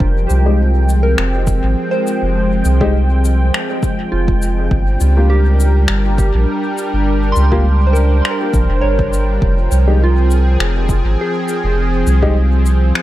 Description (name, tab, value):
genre	ambient dub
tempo	102 BPM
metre	4/4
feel	swing 54% on 16ths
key	F minor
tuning	A4 = 439 Hz
part	warm analog pad	sustained chords	0.0-13.0 s	F3 to G5	-20 LUFS	equal	chorus
part	soft synth bell	arpeggios	0.0-13.0 s	F4 to C6	-23 LUFS	right 2 dB	chorus, dub echo
part	soft dub sub bass	bass	0.0-12.9 s	F1 to Db2	-13 LUFS	equal	none
part	electronic kick drum	drums	0.0-12.3 s	none	-18 LUFS	equal	overdrive
part	cabasa and finger snaps	drums	0.3-13.0 s	none	-23 LUFS	left 2 dB	dub echo
part	dark upright piano	stabs	0.5-12.3 s	Ab3 to G4	-25 LUFS	left 2 dB	dub echo
room	little or no reverb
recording	echo-heavy mix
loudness	-12 LUFS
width	side -15 dB against mid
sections	0.0-13.0 A section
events	none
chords	0.0 Fmadd9; 4.7 Gm7b5; 9.4 Fmadd9